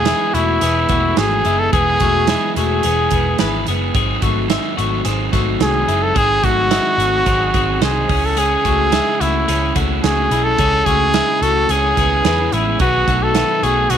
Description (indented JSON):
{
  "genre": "jangly indie pop",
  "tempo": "108 BPM",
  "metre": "4/4",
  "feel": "straight",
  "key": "E major",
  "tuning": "A4 = 440 Hz",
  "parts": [
    { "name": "bright trumpet", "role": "melody", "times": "0.0-14.0 s", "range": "E4 to A4", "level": "-17 LUFS", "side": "equal", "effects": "slapback echo" },
    { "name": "crunchy overdriven guitar", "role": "accompaniment", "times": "0.0-14.0 s", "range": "G#2 to E4", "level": "-23 LUFS", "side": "right 13 dB", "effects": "none" },
    { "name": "twelve-string electric guitar", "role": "arpeggios", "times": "0.0-14.0 s", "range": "G#3 to B#4", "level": "-22 LUFS", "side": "left 14 dB", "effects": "slapback echo" },
    { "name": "vintage muted picked electric bass", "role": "bass", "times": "0.0-14.0 s", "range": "E1 to E2", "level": "-21 LUFS", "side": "equal", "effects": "none" },
    { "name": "modern studio drum kit", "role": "drums", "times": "0.1-14.0 s", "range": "hi-hat, kick drum, snare drum", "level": "-22 LUFS", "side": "right 4 dB", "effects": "none" }
  ],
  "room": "light reverb, small room ambience",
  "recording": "1960s-style stereo with parts hard left and right",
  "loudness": "-14 LUFS",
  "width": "side -9 dB against mid",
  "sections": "0.0-14.0 A section",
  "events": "none",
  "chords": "0.0 E; 3.9 G#7; 8.1 C#m; 12.8 B",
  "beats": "0.06 0.62 1.17 | 1.73 2.28 2.84 3.39 | 3.95 4.50 5.05 5.61 | 6.16 6.71 7.27 7.82 | 8.37 8.93 9.48 10.03 | 10.59 11.14 11.69 12.24 | 12.80 13.35 13.90"
}